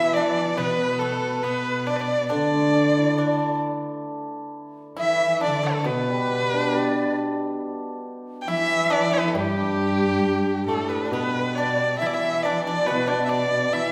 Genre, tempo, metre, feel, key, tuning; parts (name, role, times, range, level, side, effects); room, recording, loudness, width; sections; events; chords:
chinese traditional, Chinese chamber ensemble; 69 BPM; 2/4; rubato; A4 = 441 Hz
rich erhu; melody; 0.0-13.9 s; G4 to G5; -28 LUFS; equal
bright large dizi; second line; 0.0-13.9 s; G4 to E5; -29 LUFS; equal
dark cello; second line; 0.0-13.9 s; G2 to E3; -30 LUFS; equal
pipa; second line; 0.0-13.9 s; G3 to E4; -34 LUFS; equal
hammered dulcimer; accompaniment; 0.0-13.9 s; B2 to A4; -29 LUFS; equal
wet recital hall reverb, RT60 1.5 s; recorded in a church or concert hall; -23 LUFS; mono
0.0-11.1 A section; 11.1-13.9 B section